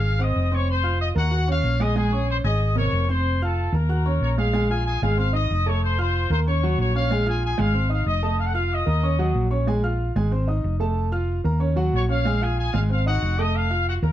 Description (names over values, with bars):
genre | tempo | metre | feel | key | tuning
latin, salsa | 187 BPM | 4/4 | straight | Bb minor | A4 = 440 Hz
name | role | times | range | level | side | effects
bright trumpet section | melody | 0.0-9.4, 11.9-14.1 s | Gb4 to Eb6 | -27 LUFS | left 3 dB | none
warm grand piano | accompaniment | 0.0-14.1 s | C3 to Ab6 | -26 LUFS | right 2 dB | none
hollow-body short-scale fingered electric bass | bass | 0.0-14.1 s | F1 to Eb2 | -22 LUFS | equal | none
room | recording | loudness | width
light reverb | dark, warm production | -20 LUFS | side -12 dB against mid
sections
0.0-4.5 A section; 4.5-14.1 B section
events
none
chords
0.0 Ab; 0.7 F5; 1.3 Ebm7; 2.0 Bbm9; 2.6 Abadd9; 3.3 F7; 3.9 Ebm7; 4.5 Bb5; 5.2 Ab; 5.8 F7; 6.5 Ebm7; 7.1 Bb5; 7.8 Ab; 8.4 F7; 9.0 Ebm7; 9.7 Bb5; 10.3 Ab; 11.0 F7; 11.6 Ebm7; 12.3 Bb5; 12.9 Ab7; 13.5 F7b9